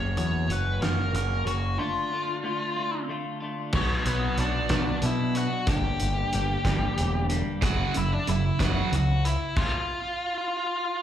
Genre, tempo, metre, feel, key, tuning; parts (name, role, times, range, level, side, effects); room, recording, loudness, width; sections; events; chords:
quiet-loud alternative rock; 62 BPM (dotted quarters); 6/8; straight; B harmonic minor; A4 = 440 Hz
nasal lead guitar with a parked wah; melody; 0.0-11.0 s; B3 to G5; -30 LUFS; left 1 dB; overdrive, slapback echo, analog delay
clean electric guitar; arpeggios; 0.0-7.6 s; F#2 to G4; -31 LUFS; left 1 dB; lush chorus, slapback echo, analog delay
growling picked electric bass; bass; 0.0-9.4 s; E1 to B2; -27 LUFS; equal; overdrive
loose indie drum kit; drums; 0.2-9.7 s; crash cymbal, hi-hat, kick drum, snare drum; -30 LUFS; equal
cranked stack guitar; riff; 7.6-9.2 s; F#2 to F#3; -27 LUFS; right 8 dB; overdrive, slapback echo
light reverb; live gig heard through the venue's PA, club reverb; -24 LUFS; side -10 dB against mid
0.0-3.7 A section; 3.7-11.0 B section
break 1.8-3.7; stop 9.6-11.0
0.0 F#; 1.8 Dm; 3.7 Bm; 5.7 Gm; 7.6 F#5; 9.6 N.C.